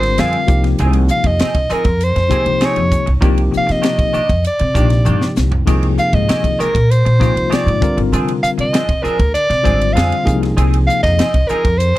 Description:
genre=electric jazz fusion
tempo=98 BPM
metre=4/4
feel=straight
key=unclear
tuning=A4 = 440 Hz
part: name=warm soprano saxophone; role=melody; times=0.0-12.0 s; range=Bb4 to F5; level=-17 LUFS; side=equal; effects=slapback echo
part: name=bell-like tine electric piano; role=accompaniment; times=0.0-11.3 s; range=C3 to C5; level=-19 LUFS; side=left 4 dB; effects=medium stereo tremolo
part: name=semi-hollow electric guitar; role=stabs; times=0.0-12.0 s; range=Eb3 to Ab4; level=-25 LUFS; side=right 2 dB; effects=analog chorus
part: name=upright bass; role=bass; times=0.0-11.9 s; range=Ab1 to C3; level=-16 LUFS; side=equal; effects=none
part: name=crisp fusion drum kit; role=drums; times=0.0-12.0 s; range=crash cymbal, hi-hat, kick drum, ride cymbal, snare drum, toms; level=-19 LUFS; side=equal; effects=none
room=little or no reverb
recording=dry, close 1970s-style studio recording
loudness=-12 LUFS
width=side -16 dB against mid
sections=0.0-12.0 A section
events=drum fill 5.1-5.7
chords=0.5 Abmaj13/C; 3.2 Cm9; 5.7 Fm9/C; 7.8 Bb9; 10.3 Ab69

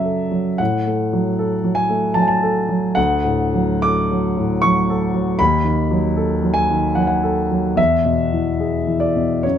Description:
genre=classical, romantic nocturne for solo piano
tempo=75 BPM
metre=3/4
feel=uneven beats, rubato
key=unclear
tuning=A4 = 440 Hz
part: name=warm concert grand piano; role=solo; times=0.0-9.6 s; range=D2 to D6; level=-16 LUFS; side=equal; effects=none
room=little or no reverb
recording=close, detailed microphones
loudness=-16 LUFS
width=side -9 dB against mid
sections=0.0-9.6 A section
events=none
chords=0.0 F#m; 0.6 F#m/A; 3.0 Dmaj7; 5.4 B7/D#; 7.8 E

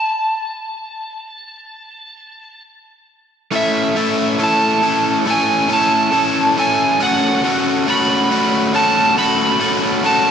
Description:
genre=rock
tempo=69 BPM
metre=4/4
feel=straight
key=A major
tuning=A4 = 440 Hz
part: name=overdriven slide guitar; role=melody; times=0.0-10.3 s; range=E5 to B5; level=-17 LUFS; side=right 1 dB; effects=analog delay
part: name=crunchy overdriven guitar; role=riff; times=3.5-10.3 s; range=A3 to A4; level=-16 LUFS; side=left 1 dB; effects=slapback echo
room=wet lush hall reverb, RT60 3.0 s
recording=big arena sound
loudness=-13 LUFS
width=side -8 dB against mid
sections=0.0-3.5 A section; 3.5-10.3 B section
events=build-up 3.5-10.3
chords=0.0 N.C.; 3.5 A; 7.0 F#m/A

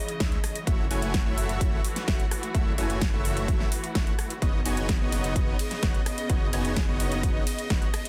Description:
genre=EDM, festival progressive house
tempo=128 BPM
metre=4/4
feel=straight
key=unclear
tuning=A4 = 441 Hz
part: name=warm studio string section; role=sustained chords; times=0.0-8.1 s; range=C#3 to D#5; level=-37 LUFS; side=equal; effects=sidechain pumping
part: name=downlifter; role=sound effects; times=0.0-0.7 s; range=none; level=barely audible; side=none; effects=none
part: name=big-room dance drum kit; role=drums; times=0.1-8.1 s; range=hi-hat, ride cymbal, rim click, snare drum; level=-35 LUFS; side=equal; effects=none
part: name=dense compressed supersaw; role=riff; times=0.2-7.9 s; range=G#3 to G#5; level=-35 LUFS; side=equal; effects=sidechain pumping, tape echo
part: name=detuned saw bass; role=bass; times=0.2-7.9 s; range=F#1 to C#2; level=-35 LUFS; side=equal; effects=chorus, tube saturation, sidechain pumping
part: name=electronic kick drum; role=drums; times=0.2-7.8 s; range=none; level=-29 LUFS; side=equal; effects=none
room=digital ambience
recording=dense, heavily limited modern master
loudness=-26 LUFS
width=mono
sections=0.0-8.1 A section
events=none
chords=0.0 C#madd9; 0.7 F#m7; 4.4 Badd9/F#

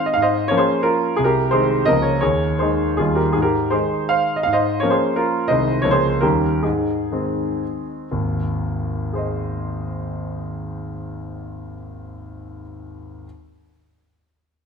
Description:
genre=classical, romantic triple-time dance for piano with dotted rhythms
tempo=109-189 BPM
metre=3/4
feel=rubato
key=Ab major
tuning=A4 = 440 Hz
part: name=clear concert grand piano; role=solo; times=0.0-13.3 s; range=Ab1 to F5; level=-18 LUFS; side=equal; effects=none
room=wet recital hall reverb, RT60 1.3 s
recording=none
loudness=-18 LUFS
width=side -6 dB against mid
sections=0.0-8.1 A section; 8.1-11.1 B section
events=slowing down 5.0-8.1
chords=0.1 Bbm/Ab; 1.2 Ab/C; 1.9 Bbm7/Db; 2.2 Ab/Eb; 3.0 Eb; 3.4 Ab; 4.5 Bbm/Ab; 5.5 Ab/C; 5.8 Bbm7/Db; 6.2 Eb7; 6.6 Ab

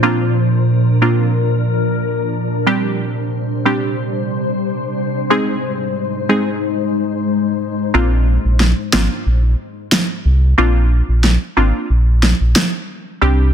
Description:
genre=dancehall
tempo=91 BPM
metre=4/4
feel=straight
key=unclear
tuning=A4 = 440 Hz
part: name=wavetable chord stab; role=accompaniment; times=0.0-13.5 s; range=G3 to Ab4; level=-18 LUFS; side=right 1 dB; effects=none
part: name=glassy FM pad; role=sustained chords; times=0.0-7.9 s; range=Ab2 to C5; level=-18 LUFS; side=left 1 dB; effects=ensemble chorus, built-in reverb
part: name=sub bass with octave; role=bass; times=7.9-13.5 s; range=Ab1 to C2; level=-13 LUFS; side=equal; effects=none
part: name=electronic snare drum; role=drums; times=8.6-12.7 s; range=none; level=-16 LUFS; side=right 1 dB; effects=overdrive
room=light reverb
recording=dense, heavily limited modern master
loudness=-14 LUFS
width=side -8 dB against mid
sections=0.0-7.9 A section; 7.9-13.5 B section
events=kick muted 7.9-13.5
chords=0.0 Bbadd9; 2.7 Csus2; 5.3 Ab; 7.9 Bbadd9

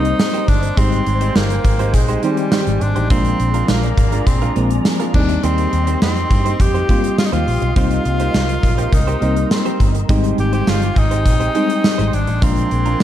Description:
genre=1980s-style pop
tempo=103 BPM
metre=4/4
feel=straight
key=unclear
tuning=A4 = 440 Hz
part: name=bright tenor saxophone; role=melody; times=0.0-13.0 s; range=G3 to G4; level=-22 LUFS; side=equal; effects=digital delay
part: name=FM electric piano with auto-pan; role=accompaniment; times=0.0-13.0 s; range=Eb3 to F4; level=-21 LUFS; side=left 3 dB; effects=none
part: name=soft string machine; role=sustained chords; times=0.0-13.0 s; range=Eb4 to D6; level=-28 LUFS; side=equal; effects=phaser, ensemble chorus
part: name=direct-recorded clean electric guitar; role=riff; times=0.0-13.0 s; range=Ab3 to C5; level=-26 LUFS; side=right 7 dB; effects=analog chorus, digital delay
part: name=vintage muted fingered electric bass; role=bass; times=0.0-13.0 s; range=G1 to G2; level=-19 LUFS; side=equal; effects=none
part: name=gated 80s drum kit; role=drums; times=0.0-13.0 s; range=crash cymbal, hi-hat, kick drum, snare drum, tambourine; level=-17 LUFS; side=equal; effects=none
room=light reverb, small room ambience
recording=dark, warm production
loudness=-14 LUFS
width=side -11 dB against mid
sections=0.0-13.0 A section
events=none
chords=0.0 Cm7; 0.8 Abmaj7; 3.1 Bb7; 5.1 Eb6; 7.8 Cm7; 10.1 Abmaj7; 12.4 Bb7

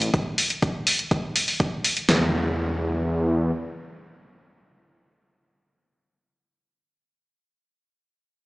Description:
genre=progressive house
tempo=123 BPM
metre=4/4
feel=straight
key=unclear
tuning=A4 = 440 Hz
part: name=dark detuned saw bass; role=bass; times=0.0-3.5 s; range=E2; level=-23 LUFS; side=equal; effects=sidechain pumping
part: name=electronic hi-hat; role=drums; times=0.0-2.1 s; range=none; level=-22 LUFS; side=equal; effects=sidechain pumping on hats
part: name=deep house drum kit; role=drums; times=0.1-2.2 s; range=kick drum, snare drum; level=-23 LUFS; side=equal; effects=none
part: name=impact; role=sound effects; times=2.1-7.1 s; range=none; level=-30 LUFS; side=equal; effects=none
room=light reverb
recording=played on a big sound system in a bare room, large studio reverb, small speaker sound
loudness=-21 LUFS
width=side -21 dB against mid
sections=0.0-2.1 A section; 2.1-6.0 B section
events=none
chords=none

